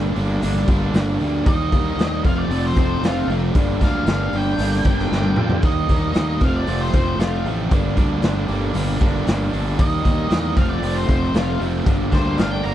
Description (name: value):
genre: blues rock power trio and southern rock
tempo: 115 BPM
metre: 4/4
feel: straight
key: G minor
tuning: A4 = 440 Hz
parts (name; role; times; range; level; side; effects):
- distorted electric guitar; riff; 0.0-12.7 s; F2 to Eb4; -22 LUFS; right 1 dB; distortion
- fuzz fingered electric bass; bass; 0.0-12.7 s; F1 to F2; -24 LUFS; equal; overdrive
- raw garage drum kit; drums; 0.2-12.7 s; hi-hat, kick drum, snare drum, toms; -21 LUFS; equal; none
- octave-fuzz lead guitar; melody; 1.5-12.7 s; F4 to Bb5; -26 LUFS; equal; distortion, slapback echo
room: little or no reverb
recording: none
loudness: -17 LUFS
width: side -12 dB against mid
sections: 0.0-12.7 A section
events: drum fill 5.1-5.6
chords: 0.0 Gm; 1.5 Eb; 2.2 F; 3.6 Gm; 5.6 Eb; 6.4 F; 7.7 Gm; 9.8 Eb; 10.6 F; 11.9 Gm